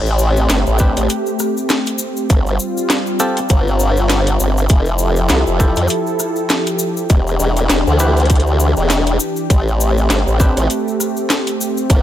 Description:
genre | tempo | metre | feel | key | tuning
glitch hop | 100 BPM | 4/4 | swing 57% on 16ths | A minor | A4 = 440 Hz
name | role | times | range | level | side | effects
warm analog pad | sustained chords | 0.1-12.0 s | E3 to A4 | -20 LUFS | equal | chorus, sidechain pumping
formant-sweep wobble bass | bass | 0.0-12.0 s | E1 to F2 | -15 LUFS | equal | chorus
cabasa | percussion | 0.1-12.0 s | none | -26 LUFS | left 4 dB | none
drum and bass drum kit | drums | 0.5-12.0 s | hi-hat, rim click, snare drum | -20 LUFS | equal | none
clav | stabs | 0.8-10.6 s | C4 to B4 | -23 LUFS | equal | sidechain pumping, tape echo
electronic kick drum | drums | 0.8-12.0 s | none | -12 LUFS | equal | none
room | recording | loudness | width
little or no reverb | none | -13 LUFS | side -12 dB against mid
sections
0.0-12.0 A section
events
none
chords
0.0 Am7; 2.3 G7sus4; 4.7 Fmaj9; 7.1 Em7; 9.5 Am7

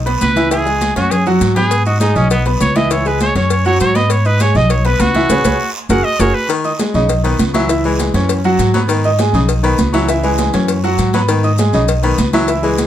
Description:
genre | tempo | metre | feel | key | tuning
latin, salsa | 200 BPM | 4/4 | straight | G# minor | A4 = 440 Hz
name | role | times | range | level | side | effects
upright bass | bass | 0.0-12.9 s | F#1 to G#2 | -16 LUFS | equal | none
clear concert grand piano | accompaniment | 0.1-12.9 s | E3 to D#6 | -17 LUFS | right 1 dB | none
congas | percussion | 0.1-12.9 s | none | -21 LUFS | right 2 dB | none
cowbell | percussion | 0.1-12.9 s | none | -25 LUFS | left 8 dB | none
maracas | percussion | 0.1-12.9 s | none | -30 LUFS | left 6 dB | none
clear trumpet | melody | 0.2-6.5 s | B3 to F#5 | -17 LUFS | right 1 dB | none
guiro | percussion | 0.2-12.9 s | none | -30 LUFS | right 4 dB | none
breathy baritone saxophone | second line | 6.5-12.9 s | C#3 to F#3 | -20 LUFS | left 3 dB | none
room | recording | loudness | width
light reverb | none | -12 LUFS | side -11 dB against mid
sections
0.0-6.5 A section; 6.5-12.9 B section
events
trumpet solo 0.0-6.5; drum fill 0.8-1.7, 5.6-6.5; band accent 5.3-6.5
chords
0.0 N.C.; 0.5 C#m; 1.1 F#sus2; 1.7 G#m; 2.3 B; 2.9 C#m; 3.5 F#sus2; 4.1 G#m; 4.7 B; 5.3 C#5; 5.9 F#add9; 6.5 G#m; 7.1 B; 7.7 C#m; 8.3 F#sus2; 8.9 G#m; 9.5 B; 10.1 C#m; 10.7 F#sus2; 11.3 G#m; 11.9 B

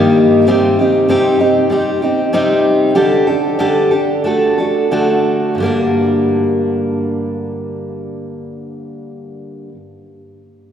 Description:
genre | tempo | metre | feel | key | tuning
folk | 88-99 BPM | 4/4 | straight | G minor | A4 = 440 Hz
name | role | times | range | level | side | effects
picked steel-string acoustic guitar | accompaniment | 0.0-9.8 s | G2 to Bb4 | -13 LUFS | equal | none
room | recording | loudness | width
wet cathedral reverb, RT60 4.7 s | recorded in a church or concert hall | -12 LUFS | side -9 dB against mid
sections
0.0-5.6 A section; 5.6-8.3 B section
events
slowing down 0.5-5.6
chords
0.5 Cm; 2.9 Dsus4; 4.2 D; 5.6 Gm

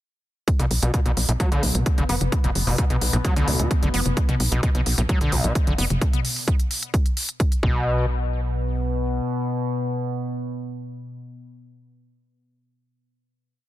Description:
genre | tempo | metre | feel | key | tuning
driving peak-time techno | 130 BPM | 4/4 | straight | B minor | A4 = 440 Hz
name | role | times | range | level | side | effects
analog drone | drone | 1.3-11.2 s | B2 to B3 | -30 LUFS | left 1 dB | chorus, sidechain pumping
electronic kick drum | drums | 0.5-7.7 s | none | -21 LUFS | equal | overdrive
techno drum kit | drums | 0.5-7.6 s | hi-hat, toms | -26 LUFS | equal | overdrive, sidechain pumping on hats, sidechain pumping on toms
screaming distorted acid line | riff | 0.6-8.1 s | B1 to B3 | -26 LUFS | equal | distortion, chorus, sidechain pumping, ping-pong delay
tight sequencer bass | bass | 0.6-9.2 s | F#1 to D2 | -24 LUFS | equal | sidechain pumping
room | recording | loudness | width
little or no reverb | dense, heavily limited modern master | -20 LUFS | side -14 dB against mid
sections
0.5-7.9 groove; 7.9-11.6 final hit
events
filter sweep on acid bass 0.5-6.0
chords
0.5 B5; 7.6 N.C.

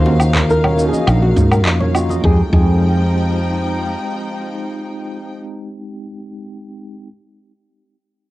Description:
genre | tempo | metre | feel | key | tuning
sunset chillout | 103 BPM | 4/4 | straight | F minor | A4 = 439 Hz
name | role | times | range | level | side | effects
flamenco guitar | melody | 0.0-6.0 s | Gb4 to C5 | -22 LUFS | equal | analog delay
mellow tine electric piano | accompaniment | 0.0-7.1 s | Ab3 to G5 | -24 LUFS | equal | medium stereo tremolo, auto-pan, cassette tape, analog delay
dark studio string section | sustained chords | 0.0-5.3 s | Db3 to G5 | -25 LUFS | left 1 dB | cassette tape
woody fretless electric bass | bass | 0.0-3.9 s | Bb1 to Ab2 | -15 LUFS | equal | none
soft round pluck | arpeggios | 0.1-2.7 s | Eb4 to Eb5 | -25 LUFS | left 1 dB | chorus, cassette tape, analog delay
congas | percussion | 0.1-2.2 s | none | -26 LUFS | right 3 dB | none
electronic woodblock, shaker and handclaps | drums | 0.2-2.2 s | none | -20 LUFS | equal | small room reverb, cassette tape
electronic kick drum | drums | 0.4-2.7 s | none | -17 LUFS | equal | small room reverb, cassette tape
room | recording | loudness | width
light reverb | home recording on cassette | -13 LUFS | side -17 dB against mid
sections
0.0-2.2 A section; 2.2-4.6 B section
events
none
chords
0.0 Ebm9; 2.2 Fm9

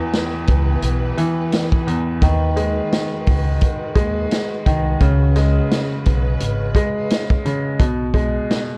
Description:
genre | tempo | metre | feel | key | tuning
hip hop, boom-bap hip-hop | 86 BPM | 4/4 | swing 57% on 16ths | unclear | A4 = 440 Hz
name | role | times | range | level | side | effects
bright upright piano | accompaniment | 0.0-8.8 s | E2 to G#3 | -23 LUFS | equal | cassette tape
warm symphonic string section | sustained chords | 0.0-7.8 s | C#3 to B4 | -32 LUFS | equal | none
vintage drum kit | drums | 0.1-8.7 s | hi-hat, kick drum, snare drum | -22 LUFS | equal | none
upright bass | bass | 0.5-8.4 s | G#1 to D#2 | -22 LUFS | equal | transformer saturation
room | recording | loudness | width
small room ambience | worn, warbling old tape, cassette tape, warbly pitch drift | -19 LUFS | mono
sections
0.0-7.8 A section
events
none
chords
0.0 Em; 2.2 G#m7; 5.0 C#7sus4; 7.8 B5

